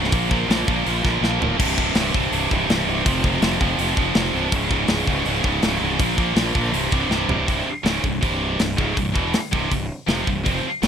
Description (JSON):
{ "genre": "heavy metal", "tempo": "163 BPM", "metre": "4/4", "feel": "straight", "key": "unclear", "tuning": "A4 = 440 Hz", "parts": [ { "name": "heavy high-gain guitar", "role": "riff", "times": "0.0-10.9 s", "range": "C2 to Bb3", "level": "-21 LUFS", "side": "right 1 dB", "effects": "distortion" }, { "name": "fuzz fingered electric bass", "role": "bass", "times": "0.0-10.9 s", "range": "C1 to Bb1", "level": "-26 LUFS", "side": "equal", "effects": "overdrive" }, { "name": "tight metal drum kit", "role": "drums", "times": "0.0-10.9 s", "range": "crash cymbal, hi-hat, kick drum, snare drum, toms", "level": "-23 LUFS", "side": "left 1 dB", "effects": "none" } ], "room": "little or no reverb", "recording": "none", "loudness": "-18 LUFS", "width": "side -8 dB against mid", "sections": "0.0-7.5 A section; 7.5-10.9 B section", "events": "drum fill 1.2-1.6, 7.1-7.5", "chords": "0.1 Bb5; 1.6 C5; 3.1 F5; 4.5 Db5; 6.0 Bb5; 6.7 C5; 7.5 C" }